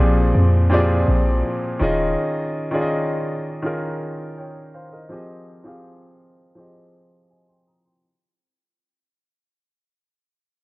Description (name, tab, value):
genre	contemporary R&B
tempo	82 BPM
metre	4/4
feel	straight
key	F minor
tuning	A4 = 441 Hz
part	clear grand piano	accompaniment	0.0-8.2 s	Bb2 to Eb6	-22 LUFS	equal	none
part	warm 808-style bass	bass	0.0-2.2 s	Eb1 to F2	-17 LUFS	equal	none
room	light reverb, small room ambience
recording	worn, warbling old tape, cassette tape, warbly pitch drift, low-pass filter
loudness	-18 LUFS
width	side -21 dB against mid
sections	0.0-8.0 A section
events	fade-out 0.0-8.0; filter sweep 0.0-8.0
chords	0.0 Bb13; 1.8 Eb7sus4; 5.1 Fm7